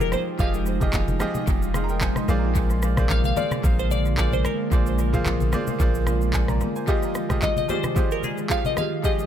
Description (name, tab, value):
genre	amapiano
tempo	111 BPM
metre	4/4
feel	swing 55% on 16ths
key	F dorian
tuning	A4 = 439 Hz
part	glassy wavetable pluck	melody	0.0-9.3 s	Ab4 to F5	-28 LUFS	left 2 dB	chorus, analog delay
part	bright grand piano	accompaniment	0.0-9.3 s	F3 to C6	-29 LUFS	right 1 dB	analog delay
part	ethereal airy pad	sustained chords	0.0-9.3 s	D3 to G5	-29 LUFS	right 1 dB	ensemble chorus, built-in reverb
part	punchy sub bass	bass	0.0-6.6 s	F1 to Bb1	-24 LUFS	equal	none
part	afro-pop drum kit	drums	0.0-9.3 s	handclaps, kick drum, rim click, shaker	-26 LUFS	equal	analog delay
part	congas	percussion	0.0-8.9 s	none	-32 LUFS	left 2 dB	analog delay
part	marimba with medium mallets	stabs	6.9-9.3 s	G4 to Eb5	-31 LUFS	left 1 dB	analog delay
room	little or no reverb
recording	echo-heavy mix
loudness	-20 LUFS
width	side -10 dB against mid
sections	0.0-9.3 A section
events	grand piano fill 1.5-2.6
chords	0.0 Fm9; 2.3 Bb7; 6.9 Fm9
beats	| 0.39 0.93 1.47 2.02 | 2.56 3.10 3.64 4.18 | 4.72 5.26 5.80 6.34 | 6.88 7.42 7.96 8.50 | 9.04